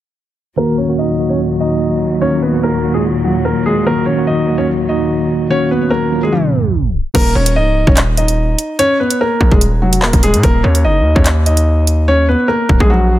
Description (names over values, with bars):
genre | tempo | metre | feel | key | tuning
hip hop, drill | 146 BPM | 4/4 | half-time | Eb minor | A4 = 439 Hz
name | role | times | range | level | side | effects
dark concert grand piano | melody | 0.6-13.2 s | Eb3 to Eb5 | -16 LUFS | equal | low-pass filter, digital delay
mellow tine electric piano | accompaniment | 0.6-7.2 s | Eb3 to Gb4 | -16 LUFS | equal | medium stereo tremolo, low-pass filter
dark symphonic string section | sustained chords | 0.6-7.1 s | Eb2 to Gb3 | -22 LUFS | equal | low-pass filter
distorted 808-style bass | bass | 7.1-13.2 s | Db1 to Bb2 | -13 LUFS | equal | distortion
drill drum kit | drums | 7.1-12.9 s | crash cymbal, handclaps, hi-hat, kick drum | -13 LUFS | equal | none
room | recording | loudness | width
little or no reverb | tape stop | -11 LUFS | side -14 dB against mid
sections
0.6-7.1 A section; 7.1-13.2 B section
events
filter sweep 0.6-7.1; tape stop 6.3-7.1; hi-hats muted 12.1-13.2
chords
0.6 Ebm; 7.1 Eb5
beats
| 0.57 0.98 1.39 1.80 | 2.21 2.63 3.04 3.45 | 3.86 4.27 4.68 5.09 | 5.50 5.91 6.33 6.74 | 7.15 7.56 7.97 8.38 | 8.79 9.20 9.61 10.02 | 10.44 10.85 11.26 11.67 | 12.08 12.49 12.90